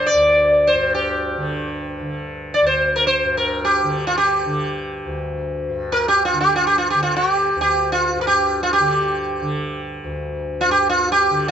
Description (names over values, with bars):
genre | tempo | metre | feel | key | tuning
indian classical, Hindustani | free time | none | none | D raga malkauns | A4 = 440 Hz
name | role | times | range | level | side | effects
sitar | melody | 0.0-11.5 s | F4 to D5 | -16 LUFS | equal | none
tanpura | drone | 0.0-11.5 s | D2 to D3 | -26 LUFS | equal | none
room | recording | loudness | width
light reverb | nothing above 7.9 kHz | -16 LUFS | side -8 dB against mid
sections
0.0-11.5 A section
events
none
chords
none